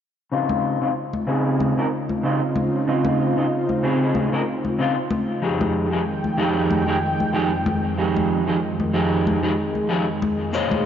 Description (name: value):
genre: sunset chillout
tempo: 94 BPM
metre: 4/4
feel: swing 55% on 16ths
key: F minor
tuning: A4 = 440 Hz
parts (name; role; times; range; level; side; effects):
- electric guitar at the edge of break-up; accompaniment; 0.3-10.9 s; Db3 to Eb5; -22 LUFS; moving between left 4 dB and right 3 dB; auto-pan, low-pass filter, ping-pong delay
- lush unison pad; sustained chords; 0.3-10.9 s; F2 to G5; -24 LUFS; equal; chorus
- congas; percussion; 0.5-10.8 s; none; -27 LUFS; left 3 dB; none
- shaker; drums; 10.5-10.7 s; none; -46 LUFS; equal; none
room: wet concert hall reverb, RT60 2.4 s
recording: worn, warbling old tape, cassette tape, warbly pitch drift, nothing above 7.5 kHz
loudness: -19 LUFS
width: side -9 dB against mid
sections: 0.3-10.9 A section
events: filter sweep on clean electric guitar 0.3-10.9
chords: 0.3 Dbmaj9; 5.4 Fm9